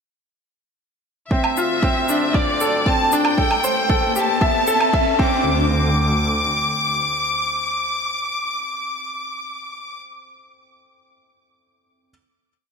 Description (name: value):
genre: piano and strings electronica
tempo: 116 BPM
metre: 4/4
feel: straight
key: unclear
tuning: A4 = 441 Hz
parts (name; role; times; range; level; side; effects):
- clear chamber violin section; melody; 1.3-10.0 s; D5 to D6; -21 LUFS; left 1 dB; ping-pong delay
- clear grand piano; riff; 1.3-12.1 s; C4 to E5; -22 LUFS; equal; ping-pong delay
- warm studio double bass section; bass; 1.3-7.0 s; A1 to D2; -26 LUFS; equal; sidechain pumping, high-pass filter
- electronic kick drum; drums; 1.3-5.3 s; none; -21 LUFS; right 1 dB; overdrive
- riser; sound effects; 2.7-5.4 s; none; -28 LUFS; left 1 dB; none
- woodblock and shaker; drums; 1.4-4.9 s; none; -24 LUFS; right 3 dB; overdrive
room: moderate concert hall reverb, RT60 1.9 s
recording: none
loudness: -17 LUFS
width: side -6 dB against mid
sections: 1.3-5.5 build; 5.5-9.6 final hit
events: build-up 1.3-5.5; riser 2.7-5.5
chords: 1.3 Dm7; 3.4 Am7; 5.2 Csus2/D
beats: | 1.31 1.83 2.35 2.87 | 3.38 3.90 4.42 4.93 | 5.45 5.97 6.49 7.00 | 7.52 8.04 8.55 9.07